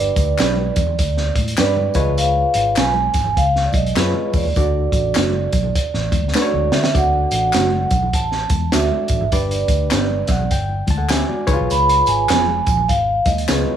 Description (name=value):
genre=uptempo 1960s-style soul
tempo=101 BPM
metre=4/4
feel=swing 62% on 8ths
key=D major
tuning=A4 = 440 Hz
part: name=vibraphone with soft mallets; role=melody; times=0.0-13.8 s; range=D5 to B5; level=-20 LUFS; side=right 3 dB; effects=none
part: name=barky reed electric piano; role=accompaniment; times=0.0-13.8 s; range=D4 to A5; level=-24 LUFS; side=left 4 dB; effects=overdrive, fast tremolo
part: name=vintage muted fingered electric bass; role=bass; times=0.0-13.6 s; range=E#1 to D3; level=-21 LUFS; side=equal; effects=none
part: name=crunchy breakbeat drum kit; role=drums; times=0.2-13.7 s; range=hi-hat, kick drum, snare drum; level=-21 LUFS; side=equal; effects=none
part: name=tambourine and handclaps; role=percussion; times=0.2-13.7 s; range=none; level=-30 LUFS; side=left 3 dB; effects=none
part: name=mellow electric guitar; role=stabs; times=0.4-13.6 s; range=A3 to B4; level=-24 LUFS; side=right 5 dB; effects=slapback echo
part: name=congas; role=percussion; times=0.6-13.8 s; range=none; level=-31 LUFS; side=left 6 dB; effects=none
room=light reverb, small room ambience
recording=none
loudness=-15 LUFS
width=side -9 dB against mid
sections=0.0-6.9 A section; 6.9-13.8 A section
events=drum fill 6.3-6.9; reed electric piano fill 9.9-11.7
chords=0.0 G; 1.9 C#7; 4.6 D; 9.3 G; 11.4 C#7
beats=0.40 0.99 1.59 | 2.18 2.78 3.37 3.97 | 4.56 5.16 5.75 6.35 | 6.95 7.54 8.14 8.73 | 9.33 9.92 10.52 11.11 | 11.71 12.30 12.89 13.49